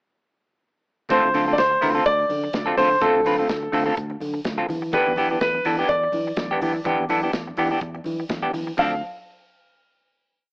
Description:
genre	disco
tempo	125 BPM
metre	4/4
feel	swing 56% on 16ths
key	D dorian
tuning	A4 = 440 Hz
part	clear baby grand piano	melody	1.1-9.0 s	A4 to F5	-21 LUFS	equal	cassette tape
part	semi-hollow electric guitar	accompaniment	1.1-8.9 s	E3 to B4	-23 LUFS	equal	harmonic tremolo, cassette tape
part	fingered electric bass	bass	1.1-9.0 s	D2 to E3	-28 LUFS	equal	none
part	modern studio drum kit	drums	1.1-8.9 s	crash cymbal, hi-hat, kick drum, snare drum	-32 LUFS	equal	cassette tape
part	congas	percussion	1.1-9.0 s	none	-38 LUFS	equal	none
room	moderate spring reverb, RT60 1.1 s, small room ambience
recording	home recording on cassette, AM radio sound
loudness	-19 LUFS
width	side -36 dB against mid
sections	1.1-8.8 verse; 8.8-10.5 final chord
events	none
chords	1.1 Dm7; 4.7 Em7; 8.8 Dm7

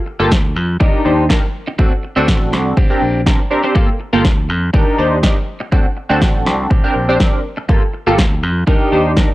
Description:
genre	filtered disco house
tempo	122 BPM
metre	4/4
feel	swing 53% on 16ths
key	G minor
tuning	A4 = 440 Hz
part	electric guitar at the edge of break-up	riff	0.1-9.1 s	Bb3 to Bb4	-21 LUFS	equal	phaser, sidechain pumping, low-pass filter
part	funky polysynth comp	accompaniment	0.2-9.3 s	Bb3 to C5	-17 LUFS	equal	chorus, phaser, sidechain pumping, low-pass filter
part	fingered electric bass	bass	0.2-9.3 s	G1 to F2	-19 LUFS	equal	sidechain pumping, low-pass filter
part	electronic kick drum	drums	0.3-9.3 s	none	-14 LUFS	equal	none
part	electronic snare drum	drums	0.3-9.3 s	none	-19 LUFS	equal	none
room	little or no reverb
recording	dry, gritty hardware recording, transformer saturation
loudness	-12 LUFS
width	side -17 dB against mid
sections	0.0-9.3 A section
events	none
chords	0.0 Gm9; 0.8 Ebmaj7; 1.8 D7; 2.8 Bb69; 3.8 Gm9; 4.7 Ebmaj7; 5.7 D7; 6.7 Bb69; 7.7 Gm9; 8.7 Ebmaj7

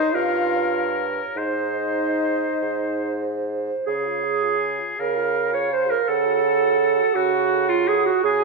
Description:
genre	classical, slow romantic movement for wind quintet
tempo	47-57 BPM (dotted quarters)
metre	6/8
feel	rubato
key	Db major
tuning	A4 = 441 Hz
part	silver concert flute	melody	0.0-8.4 s	Eb5 to Ab5	-27 LUFS	left 8 dB	none
part	clear oboe	second line	0.0-8.4 s	F4 to Db5	-27 LUFS	left 2 dB	none
part	clear French horn	accompaniment	0.0-8.4 s	Eb4 to A4	-29 LUFS	right 2 dB	none
part	dark clarinet	accompaniment	0.0-8.4 s	F4 to Db5	-22 LUFS	right 8 dB	none
part	mellow bassoon	bass	0.1-8.4 s	G2 to Db3	-28 LUFS	right 1 dB	none
room	wet recital hall reverb, RT60 1.6 s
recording	dark, warm production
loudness	-19 LUFS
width	side -2 dB against mid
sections	0.0-3.9 A section; 3.9-8.4 B section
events	none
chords	0.0 Eb7/G (rootless); 1.4 Ab; 3.9 Db; 6.1 Gbm/Db

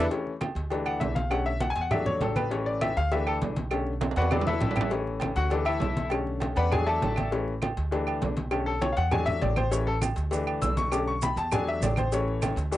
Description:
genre	latin, salsa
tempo	200 BPM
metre	4/4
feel	straight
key	A major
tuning	A4 = 440 Hz
part	bright concert grand piano	accompaniment	0.0-12.8 s	D3 to E6	-29 LUFS	left 4 dB	cassette tape
part	upright bass	bass	0.0-12.8 s	A1 to E2	-30 LUFS	right 1 dB	none
part	agogo bells and timbales	percussion	0.1-12.8 s	none	-34 LUFS	right 7 dB	none
part	congas	percussion	0.1-12.8 s	none	-32 LUFS	equal	none
part	cowbell	percussion	0.1-12.8 s	none	-36 LUFS	left 4 dB	none
part	claves	percussion	0.4-12.6 s	none	-38 LUFS	right 8 dB	none
part	maracas	percussion	9.7-12.8 s	none	-41 LUFS	right 9 dB	none
room	light reverb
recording	home recording on cassette, nothing above 10.6 kHz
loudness	-25 LUFS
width	side -14 dB against mid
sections	0.1-12.8 A section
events	grand piano solo 0.1-12.8; drum fill 4.0-4.9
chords	0.1 A; 0.7 Dsus2; 1.3 Bm7; 1.9 E7sus4; 2.5 A; 3.1 Dsus2; 3.7 Bm7; 4.3 E7sus4; 4.9 A; 5.5 Dsus2; 6.1 Bm7; 6.7 E7sus4; 7.3 A; 7.9 Dsus2; 8.5 Bm7; 9.1 E7sus4; 9.7 A; 10.3 Dsus2; 11.5 E7sus4; 12.1 A

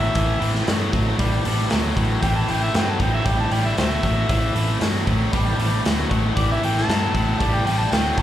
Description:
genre	blues rock power trio and southern rock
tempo	116 BPM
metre	4/4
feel	straight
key	A minor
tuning	A4 = 440 Hz
part	overdriven harmonica	melody	0.0-8.2 s	G4 to A5	-25 LUFS	equal	slapback echo
part	tonewheel organ	sustained chords	0.0-8.2 s	E3 to E4	-34 LUFS	right 4 dB	none
part	tight distorted guitar	riff	0.0-8.2 s	A2 to G3	-24 LUFS	left 1 dB	distortion, slapback echo
part	vintage muted picked electric bass	bass	0.0-8.2 s	A1 to G2	-24 LUFS	equal	none
part	raw garage drum kit	drums	0.1-8.2 s	hi-hat, kick drum, snare drum	-23 LUFS	equal	none
room	little or no reverb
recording	live gig heard through the venue's PA, club ambience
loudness	-18 LUFS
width	side -12 dB against mid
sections	0.0-8.2 A section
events	harmonica solo 0.0-8.2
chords	0.0 Am

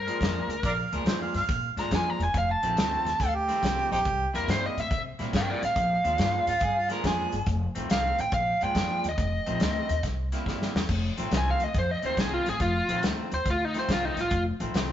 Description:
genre	electric blues shuffle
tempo	140 BPM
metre	4/4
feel	swing 67% on 8ths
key	F mixolydian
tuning	A4 = 440 Hz
part	biting lead guitar	melody	0.0-14.4 s	Eb4 to Bb5	-28 LUFS	equal	overdrive
part	upright bass	bass	0.0-14.9 s	E1 to C3	-31 LUFS	left 1 dB	none
part	electric guitar through a small old amp	riff	0.1-14.9 s	F2 to E4	-35 LUFS	left 1 dB	none
part	warm soul drum kit	drums	0.1-14.9 s	crash cymbal, hi-hat, kick drum, snare drum	-30 LUFS	equal	none
part	warm harmonica	second line	0.7-7.5 s	C4 to F5	-29 LUFS	right 2 dB	overdrive
room	moderate stone room reverb, RT60 1.4 s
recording	rough rehearsal-room recording, nothing above 7.8 kHz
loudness	-24 LUFS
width	side -11 dB against mid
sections	0.0-10.9 A section; 10.9-14.9 A section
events	drum fill 10.5-10.9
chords	0.0 Bb7; 2.3 F7; 4.1 C7; 5.8 Bb7; 7.5 F7; 8.3 Bb7; 9.2 F7; 10.0 C7; 10.9 F7

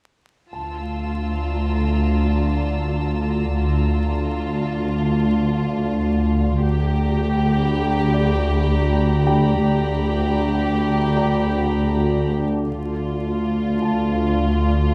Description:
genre	cinematic, suspense film score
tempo	79 BPM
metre	4/4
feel	straight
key	D minor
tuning	A4 = 437 Hz
part	rich studio violin section	melody	0.5-14.9 s	F4 to G4	-30 LUFS	equal	none
part	dark studio cello section	bass	0.5-14.9 s	D2	-25 LUFS	equal	none
part	dark studio double bass section	bass	0.5-14.9 s	D2	-27 LUFS	equal	none
part	organ-like drone	drone	1.3-14.9 s	D2	-25 LUFS	equal	ensemble chorus, built-in reverb
part	clear grand piano	texture	0.5-14.9 s	G4 to Bb5	-33 LUFS	equal	none
part	warm studio violin section	texture	0.5-12.3 s	A5 to E6	-36 LUFS	equal	none
room	moderate concert hall reverb, RT60 1.8 s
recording	dark, warm production, vinyl crackle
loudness	-20 LUFS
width	mono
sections	0.5-12.7 A section; 12.7-14.9 B section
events	none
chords	0.5 Dmadd9

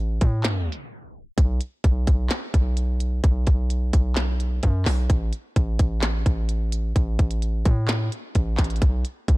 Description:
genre	hip hop, trap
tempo	129 BPM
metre	4/4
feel	half-time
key	unclear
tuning	A4 = 440 Hz
part	distorted 808-style bass	bass	0.0-9.4 s	A1 to A2	-23 LUFS	equal	distortion
part	glitchy drum kit	drums	0.2-9.4 s	handclaps, hi-hat, kick drum, snare drum	-21 LUFS	equal	none
room	digital ambience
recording	dark, warm production, tape stop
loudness	-20 LUFS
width	side -21 dB against mid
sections	0.0-1.4 A section; 1.4-9.4 B section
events	tape stop 0.4-1.4; break 0.9-1.4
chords	none

